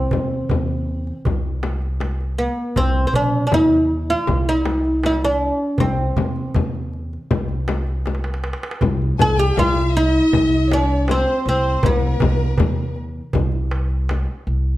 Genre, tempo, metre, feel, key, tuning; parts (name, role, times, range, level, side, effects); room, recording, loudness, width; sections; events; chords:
Arabic maqam ensemble; 79 BPM; 4/4; straight; C maqam huzam; A4 = 440 Hz
oud; melody; 0.0-12.9 s; Bb3+50c to Ab4+50c; -19 LUFS; equal
upright bass; bass; 0.0-14.8 s; Bb1+50c to E2-50c; -21 LUFS; equal
darbuka; percussion; 0.1-14.6 s; -26 LUFS; right 2 dB
frame drum; percussion; 0.1-14.3 s; -24 LUFS; left 4 dB
rich studio violin section; second line; 9.2-13.0 s; Bb4+50c to Ab5+50c; -25 LUFS; left 2 dB
moderate recital hall reverb, RT60 1.4 s; dark, warm production; -17 LUFS; side -16 dB against mid
0.0-8.8 A section; 8.8-14.8 B section
drum fill 8.1-8.8